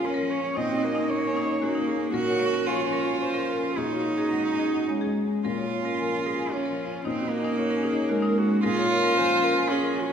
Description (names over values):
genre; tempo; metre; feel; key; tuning
neoclassical piano and strings; 104-116 BPM; 3/4; rubato; Bb minor; A4 = 441 Hz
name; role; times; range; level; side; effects
warm cello; second line; 0.0-10.1 s; Ab3 to Gb4; -25 LUFS; right 2 dB; none
dark concert grand piano; accompaniment; 0.0-10.1 s; Bb2 to Gb4; -31 LUFS; left 4 dB; none
dark viola; accompaniment; 0.0-10.1 s; Eb4 to Eb5; -32 LUFS; equal; none
marimba with medium hard mallets; arpeggios; 0.0-9.9 s; Eb4 to Ab5; -32 LUFS; left 1 dB; none
room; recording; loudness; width
wet church reverb, RT60 2.7 s; recorded in a church or concert hall; -23 LUFS; side -7 dB against mid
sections
0.0-10.1 A section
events
none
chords
0.0 Bbm; 0.6 Ebm7/Bb; 2.1 Bbm; 3.8 Ab7sus4/Bb; 5.4 Bbm7; 7.0 Ebm7/Bb; 8.6 Bbm7